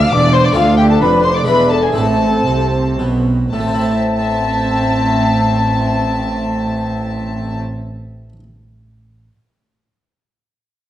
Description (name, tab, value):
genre	classical, baroque-style concerto movement with solo episodes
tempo	109-139 BPM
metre	3/4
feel	straight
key	A minor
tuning	A4 = 440 Hz
part	baroque flute	melody	0.0-7.6 s	F5 to D6	-20 LUFS	left 1 dB	none
part	rich chamber violin section	melody	0.0-7.6 s	F5 to F6	-24 LUFS	left 5 dB	none
part	warm chamber violin section	second line	0.0-7.6 s	F4 to F5	-20 LUFS	left 3 dB	none
part	dark chamber viola section	accompaniment	0.0-7.6 s	C4 to D4	-22 LUFS	right 2 dB	none
part	harpsichord	accompaniment	0.0-8.4 s	D2 to C5	-23 LUFS	equal	none
part	dark chamber cello section	bass	0.0-7.6 s	D2 to C3	-19 LUFS	right 2 dB	none
part	rich chamber double bass section	bass	0.0-7.6 s	E1 to D2	-20 LUFS	right 1 dB	none
room	moderate recital hall reverb, RT60 1.4 s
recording	worn, warbling old tape, cassette tape, warbly pitch drift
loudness	-13 LUFS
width	side -12 dB against mid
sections	0.0-3.5 A section; 3.5-6.8 B section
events	slowing down 0.0-3.5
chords	0.0 Dm; 1.5 E7; 2.0 Am